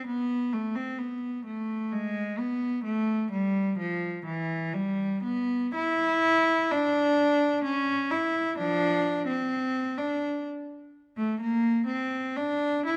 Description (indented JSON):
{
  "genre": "classical, baroque-style suite movement for unaccompanied cello",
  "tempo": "64 BPM",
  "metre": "3/4",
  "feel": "rubato",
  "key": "D minor from 5.7 s",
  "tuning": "A4 = 438 Hz",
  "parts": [
    { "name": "dark cello", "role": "solo", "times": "0.0-13.0 s", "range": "E3 to E4", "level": "-28 LUFS", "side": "equal", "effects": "none" }
  ],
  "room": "moderate recital hall reverb, RT60 1.7 s",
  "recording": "close, detailed microphones",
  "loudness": "-28 LUFS",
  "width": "mono",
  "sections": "0.0-13.0 A section",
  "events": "none",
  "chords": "none",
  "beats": "| 0.06 1.00 1.93 | 2.86 3.79 4.74 | 5.74 6.70 7.63 | 8.57 9.51 10.46 | 11.40 12.37"
}